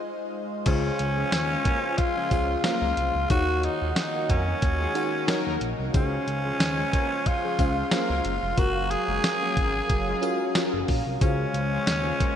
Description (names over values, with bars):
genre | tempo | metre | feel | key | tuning
1980s-style pop | 91 BPM | 4/4 | swing 55% on 16ths | Db major | A4 = 440 Hz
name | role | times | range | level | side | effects
FM electric piano with soft pad layer | accompaniment | 0.0-12.4 s | Db3 to Gb5 | -30 LUFS | left 1 dB | chorus, phaser, shimmer reverb
phased analog pad | sustained chords | 0.0-12.4 s | Db3 to C6 | -35 LUFS | equal | phaser, chorus, shimmer reverb
growling tenor saxophone | melody | 0.7-12.4 s | Db4 to Ab4 | -28 LUFS | equal | shimmer reverb, digital delay
smooth synth bass | bass | 0.7-12.1 s | F1 to F2 | -29 LUFS | equal | none
clean 12-bit digital drum machine | drums | 0.7-12.4 s | crash cymbal, hi-hat, kick drum, snare drum, tambourine | -26 LUFS | equal | none
analog synth brass | stabs | 1.2-12.3 s | F3 to Db5 | -36 LUFS | left 2 dB | chorus, shimmer reverb, digital delay
room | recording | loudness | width
wet lush hall reverb, RT60 2.4 s | bright 1980s-style digital production | -23 LUFS | side -9 dB against mid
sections
0.7-12.4 A section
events
break 0.0-0.7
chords
0.0 Fm7; 0.7 Dbmaj7; 3.3 Ebm7; 5.9 Dbmaj7; 8.6 Gbmaj7; 11.2 Dbmaj7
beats
0.00 | 0.66 1.32 1.98 2.64 | 3.30 3.96 4.62 5.28 | 5.94 6.60 7.26 7.92 | 8.58 9.23 9.89 10.55 | 11.21 11.87